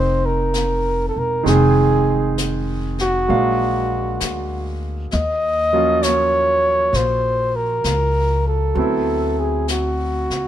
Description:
jazz ballad; 66 BPM; 4/4; swing 68% on 8ths; Bb minor; A4 = 440 Hz
breathy flugelhorn; melody; 0.0-10.5 s; Gb4 to Eb5; -19 LUFS; equal
bright grand piano; accompaniment; 0.0-10.5 s; Eb3 to F5; -23 LUFS; right 5 dB
upright bass; bass; 0.0-10.5 s; E1 to Eb2; -22 LUFS; left 1 dB
jazz brush drum kit; drums; 0.5-10.5 s; brushed snare drum, hi-hat, snare drum; -29 LUFS; left 4 dB
little or no reverb; minimal, uncompressed stereo recording; -16 LUFS; side -11 dB against mid
0.0-10.5 A section
0.0 Bbm9; 1.5 Fm7; 3.3 Bb7b13; 5.1 Ebm9; 8.8 D13

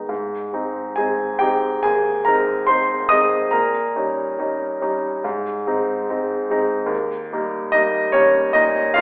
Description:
classical, romantic character piece for solo piano; 71 BPM; 4/4; rubato; Ab major; A4 = 440 Hz
warm baby grand piano; solo; 0.0-9.0 s; Eb2 to Eb6; -20 LUFS; equal
wet recital hall reverb, RT60 1.3 s; heard from further back in the room, telephone sound; -20 LUFS; mono
0.1-9.0 A section
0.1 Ab; 3.5 Eb7/Bb; 5.2 Ab; 6.9 Eb

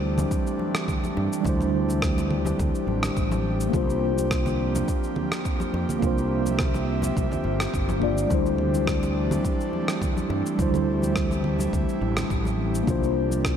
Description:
sunset chillout; 105 BPM; 4/4; swing 54% on 16ths; A4 = 439 Hz
mellow tine electric piano; accompaniment; 0.0-13.6 s; G3 to D5; -27 LUFS; moving between left 7 dB and right 6 dB; slow stereo tremolo, auto-pan, tape echo
airy breathy pad; sustained chords; 0.0-13.6 s; E3 to E5; -30 LUFS; right 1 dB; chorus
fretless electric bass; bass; 0.0-13.6 s; G1 to G2; -27 LUFS; equal
electronic congas, cabasa and rim click; drums; 0.2-13.6 s; -31 LUFS; right 1 dB
congas; percussion; 0.2-13.4 s; -35 LUFS; left 3 dB
electronic kick drum; drums; 0.3-13.6 s; -28 LUFS; equal
moderate lush hall reverb, RT60 2.7 s; big arena sound; -22 LUFS; side -8 dB against mid
0.0-13.6 A section
0.0 D9sus4; 3.7 C9sus4; 8.3 D9sus4; 12.9 C9sus4

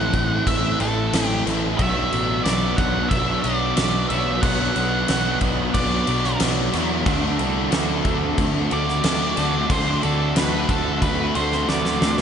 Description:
rock, shoegaze and dream pop; 91 BPM; 4/4; straight; A4 = 440 Hz
octave-fuzz lead guitar; melody; 0.0-12.1 s; A4 to F#5; -26 LUFS; right 2 dB; distortion, tape echo
overdriven electric guitar; riff; 0.0-12.2 s; B2 to A4; -26 LUFS; right 11 dB; reverse reverb
thick fuzz guitar; riff; 0.0-12.2 s; A2 to D4; -27 LUFS; left 9 dB; distortion, wide subtle chorus
fuzz picked electric bass; bass; 0.0-12.2 s; A1 to E2; -26 LUFS; equal; overdrive
huge arena drum kit; drums; 0.1-12.2 s; crash cymbal, kick drum, snare drum; -24 LUFS; left 1 dB
tight distorted guitar; riff; 1.8-12.2 s; B2 to D4; -29 LUFS; left 1 dB; distortion
light reverb, small room ambience; nothing above 10.5 kHz; -18 LUFS; side -8 dB against mid
0.0-12.2 A section
drum fill 11.7-12.2
0.0 Am; 1.8 Bm; 7.1 D7

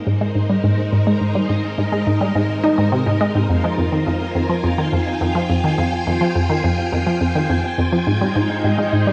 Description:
ambient, sequencer-driven space music; 105 BPM; 4/4; straight; Ab major; A4 = 440 Hz
string machine, full ensemble; sustained chords; 0.0-9.1 s; Ab3 to Ab5; -25 LUFS; equal; ensemble chorus, cassette tape
resonant blip pluck; riff; 0.1-9.1 s; F2 to Eb4; -20 LUFS; equal; chorus, cassette tape, tape echo
wet spring reverb, RT60 1.7 s, digital ambience; home recording on cassette; -19 LUFS; mono
0.0-9.1 A section
fade-in on string machine 0.0-9.1
0.0 Abmaj7; 3.5 Fm7; 8.1 Abmaj7

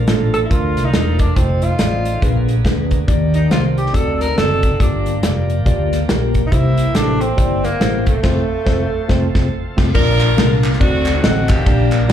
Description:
uptempo gospel; 140 BPM; 4/4; swing 60% on 8ths; Bb major; A4 = 440 Hz
tine electric piano; accompaniment; 0.0-12.1 s; G2 to Eb5; -19 LUFS; left 1 dB; medium stereo tremolo, slapback echo
bright tonewheel organ; sustained chords; 0.0-12.1 s; D3 to Bb4; -31 LUFS; right 4 dB; slow rotary speaker, overdrive
warm French horn section; sustained chords; 0.0-9.9 s; F4 to F5; -33 LUFS; right 1 dB
fingered electric bass; bass; 0.1-12.1 s; E1 to Eb2; -19 LUFS; equal
natural country drum kit; drums; 0.1-12.1 s; crash cymbal, hi-hat, kick drum, ride cymbal, snare drum; -18 LUFS; equal
warm tenor saxophone; melody; 0.3-9.5 s; A3 to Bb4; -21 LUFS; right 2 dB; slapback echo
clear saxophone section; melody; 9.9-12.1 s; A3 to Bb4; -20 LUFS; left 1 dB; slapback echo
group handclap; percussion; 10.2-12.0 s; -28 LUFS; right 1 dB
light reverb; live gig heard through the venue's PA, club reverb; -13 LUFS; side -10 dB against mid
0.0-10.0 A section; 10.0-12.1 B section
band accent 8.2-10.0
0.0 Bbmaj7; 1.4 F7; 2.2 Bb7b9; 3.1 Ebmaj7; 3.9 D7b9; 4.8 Gm7; 6.5 C7; 8.2 F; 10.0 Bb; 10.8 D7b9

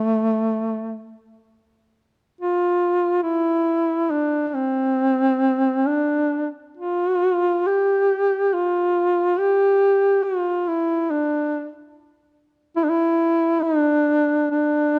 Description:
caucasian folk, Caucasian lament; free time; D minor; A4 = 445 Hz
mellow duduk; solo; 0.0-15.0 s; A3 to G4; -20 LUFS; equal
light reverb; close, detailed microphones; -21 LUFS; mono
0.0-15.0 A section

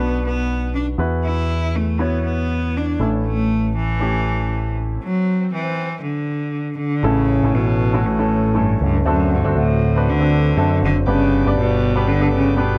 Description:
piano-driven pop; 119 BPM; 4/4; swing 56% on 16ths; A4 = 440 Hz
clear cello; melody; 0.0-12.8 s; F#2 to E4; -23 LUFS; equal
clear baby grand piano; accompaniment; 0.0-12.8 s; G2 to D5; -25 LUFS; equal
picked electric bass with an envelope filter; bass; 0.0-12.8 s; F#1 to F#2; -22 LUFS; equal
swell; sound effects; 5.0-6.0, 11.1-12.8 s; -38 LUFS; equal
bright tonewheel organ; sustained chords; 11.1-12.8 s; B4 to D6; -37 LUFS; equal; overdrive, subtle chorus
studio ambience; dry, close 1970s-style studio recording; -19 LUFS; mono
0.0-7.0 A section; 7.0-12.8 B section
swell 5.0-7.0; stop 5.0-7.0
0.0 Bm7; 1.0 Esus2; 3.0 A; 5.0 N.C.; 7.0 A; 9.1 D7; 11.1 G

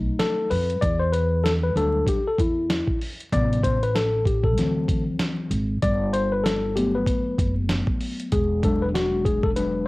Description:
hip hop, jazz-hop; 96 BPM; 4/4; swing 60% on 16ths; G major; A4 = 441 Hz
tine electric piano; accompaniment; 0.0-9.9 s; C3 to D5; -24 LUFS; left 2 dB; overdrive, medium stereo tremolo, cassette tape
upright bass; bass; 0.0-9.9 s; E1 to F2; -25 LUFS; equal
dusty soul sampler-style drum kit; drums; 0.2-9.7 s; hi-hat, kick drum, snare drum; -26 LUFS; equal; cassette tape
light reverb; home recording on cassette, vinyl crackle; -20 LUFS; side -20 dB against mid
0.0-9.9 A section
tine electric piano solo 0.0-9.9
0.0 B7; 0.8 Em7; 3.3 Am7; 4.6 D7; 5.8 Gmaj7; 8.3 E7

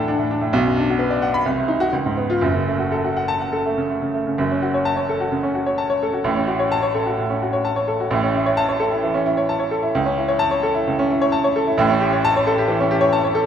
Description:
classical, virtuoso piano study; 119-135 BPM; 4/4; rubato; F# minor; A4 = 444 Hz
clear baby grand piano; solo; 0.0-13.5 s; F#1 to B5; -17 LUFS; equal
wet recital hall reverb, RT60 1.4 s; -17 LUFS; side -8 dB against mid
0.0-4.4 A section; 4.4-13.5 B section
0.0 D; 0.5 Bm; 1.5 Cdim; 1.9 C#7; 2.4 F#m; 6.2 F#m/A; 8.1 A; 10.0 A/C#; 11.8 A7

